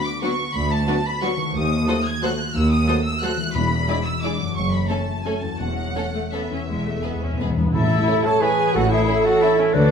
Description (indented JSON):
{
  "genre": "classical",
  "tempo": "158-199 BPM",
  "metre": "3/4",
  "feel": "rubato",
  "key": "A major",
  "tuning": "A4 = 439 Hz",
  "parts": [
    { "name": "rich studio violin section", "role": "melody", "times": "0.0-9.9 s", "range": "C#5 to G#6", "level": "-27 LUFS", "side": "equal", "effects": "none" },
    { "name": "concert harp", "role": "arpeggios", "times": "0.0-9.9 s", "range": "E2 to C#6", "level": "-29 LUFS", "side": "left 6 dB", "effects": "none" },
    { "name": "rich studio violin section", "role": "second line", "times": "0.2-9.5 s", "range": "C#4 to D5", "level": "-32 LUFS", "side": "equal", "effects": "none" },
    { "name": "rich studio viola section", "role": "accompaniment", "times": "0.2-9.9 s", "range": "F#3 to A4", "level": "-28 LUFS", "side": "left 2 dB", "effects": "none" },
    { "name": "mellow French horn section", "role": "sustained chords", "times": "0.2-9.9 s", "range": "G#3 to B4", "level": "-25 LUFS", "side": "right 2 dB", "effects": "none" },
    { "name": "clear studio cello section", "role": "bass", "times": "0.5-9.9 s", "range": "D2 to A2", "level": "-26 LUFS", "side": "equal", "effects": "none" },
    { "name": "rich studio double bass section", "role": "bass", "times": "0.5-9.9 s", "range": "E1 to D#2", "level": "-27 LUFS", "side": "right 3 dB", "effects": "none" },
    { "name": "timpani", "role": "percussion", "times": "3.5-8.2 s", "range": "E2 to A2", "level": "-26 LUFS", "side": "left 1 dB", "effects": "none" },
    { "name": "clear clarinet", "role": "second line", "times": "7.7-9.9 s", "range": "C#4 to A4", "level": "-28 LUFS", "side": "left 1 dB", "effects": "none" },
    { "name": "mellow hollow concert flute", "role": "second line", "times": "7.7-9.9 s", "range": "C#5 to A5", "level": "-24 LUFS", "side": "right 2 dB", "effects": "none" },
    { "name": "warm oboe", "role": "second line", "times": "7.7-9.9 s", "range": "E4 to C#5", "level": "-28 LUFS", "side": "left 1 dB", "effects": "none" }
  ],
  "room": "wet stone room reverb, RT60 1.2 s",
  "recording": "minimal, uncompressed stereo recording",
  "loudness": "-18 LUFS",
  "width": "side -7 dB against mid",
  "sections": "0.0-7.7 A section; 7.7-9.9 B section",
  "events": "timpani fill 6.7-7.7",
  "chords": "0.0 Bm/D; 1.5 D#dim7; 3.5 E9; 4.6 F#m; 5.6 A/E; 7.7 A"
}